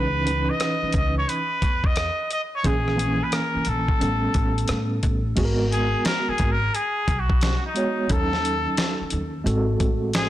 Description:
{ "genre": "hip hop, jazz-hop", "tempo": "88 BPM", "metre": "4/4", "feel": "swing 65% on 16ths", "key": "G# minor", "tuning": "A4 = 440 Hz", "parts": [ { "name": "trumpet with straight mute", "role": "melody", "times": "0.0-10.3 s", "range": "D#4 to D#5", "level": "-26 LUFS", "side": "left 1 dB", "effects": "none" }, { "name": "tine electric piano", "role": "accompaniment", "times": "0.0-10.3 s", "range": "D#3 to G#5", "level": "-26 LUFS", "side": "right 2 dB", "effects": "medium tremolo" }, { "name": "upright bass", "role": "bass", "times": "0.0-10.3 s", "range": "G#1 to A2", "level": "-26 LUFS", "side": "equal", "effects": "transformer saturation" }, { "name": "dusty soul sampler-style drum kit", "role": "drums", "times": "0.3-10.3 s", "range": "crash cymbal, hi-hat, kick drum, rim click, snare drum", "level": "-25 LUFS", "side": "equal", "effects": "none" } ], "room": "light reverb", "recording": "blown-out, overdriven recording, overdrive", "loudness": "-20 LUFS", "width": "side -13 dB against mid", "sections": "0.0-5.4 A section; 5.4-10.3 B section", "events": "muted trumpet solo 5.4-10.3", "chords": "0.0 C#m9; 2.6 A#m7b5; 4.0 A9; 5.4 G#m9; 8.1 D#m7b5; 9.5 G#7b9" }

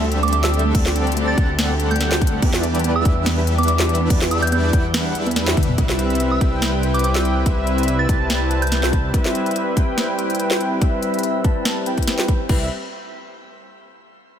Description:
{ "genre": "future bass", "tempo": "143 BPM", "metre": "4/4", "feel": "swing 54% on 16ths, half-time", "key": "C major", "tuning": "A4 = 438 Hz", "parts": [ { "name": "clear studio string section", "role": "sustained chords", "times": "0.0-5.7 s", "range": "D3 to G4", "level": "-30 LUFS", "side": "left 2 dB", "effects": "sidechain pumping" }, { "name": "thumb-piano-like synth pluck", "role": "arpeggios", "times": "0.0-5.7 s", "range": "A3 to B4", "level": "-28 LUFS", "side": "right 4 dB", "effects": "none" }, { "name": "soft supersaw", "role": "riff", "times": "0.0-12.7 s", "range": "G3 to A5", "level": "-22 LUFS", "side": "left 1 dB", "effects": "sidechain pumping, low-pass filter" }, { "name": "wide detuned saw bass", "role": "bass", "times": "0.0-9.1, 12.5-12.7 s", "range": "C2 to E2", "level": "-21 LUFS", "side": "equal", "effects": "chorus, tube saturation, sidechain pumping" }, { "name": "trap drum kit", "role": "drums", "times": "0.1-12.6 s", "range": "crash cymbal, hi-hat, snare drum, toms", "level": "-24 LUFS", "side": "equal", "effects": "studio ambience" }, { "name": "soft synth bell", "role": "melody", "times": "0.2-9.0 s", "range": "D6 to A6", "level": "-26 LUFS", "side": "right 2 dB", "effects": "chorus, phaser, sidechain pumping, ping-pong delay" }, { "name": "electronic kick drum", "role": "drums", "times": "0.7-12.6 s", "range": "none", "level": "-18 LUFS", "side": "equal", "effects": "studio ambience" } ], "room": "light reverb", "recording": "none", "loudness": "-16 LUFS", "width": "side -9 dB against mid", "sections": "0.0-5.8 A section; 5.8-12.5 B section; 12.5-14.2 C section", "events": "drop 0.0-5.8; drum fill 5.6; filter sweep on supersaw synth 5.8-12.5", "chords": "0.0 D7sus4; 2.4 Em7; 5.8 Cmaj7; 12.5 C" }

